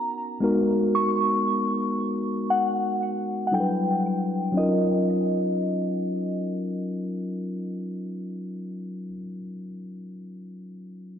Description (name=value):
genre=R&B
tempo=58 BPM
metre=4/4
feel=straight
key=Eb minor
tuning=A4 = 440 Hz
part: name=mellow tine electric piano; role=accompaniment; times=0.0-11.2 s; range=F#3 to B4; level=-26 LUFS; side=left 1 dB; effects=low-pass filter
part: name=soft synth bell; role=melody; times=0.9-9.1 s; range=Eb5 to Db6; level=-27 LUFS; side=equal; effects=chorus, low-pass filter, analog delay
room=wet lush hall reverb, RT60 2.5 s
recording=dreamy mix soaked in reverb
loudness=-23 LUFS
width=side -9 dB against mid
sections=0.0-4.6 A section; 4.6-8.7 B section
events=filter sweep 0.0-4.6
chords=0.4 Abm9; 3.5 Em9; 4.6 Ebm9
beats=| 0.41 1.45 2.48 3.52 | 4.55 5.59 6.62 7.66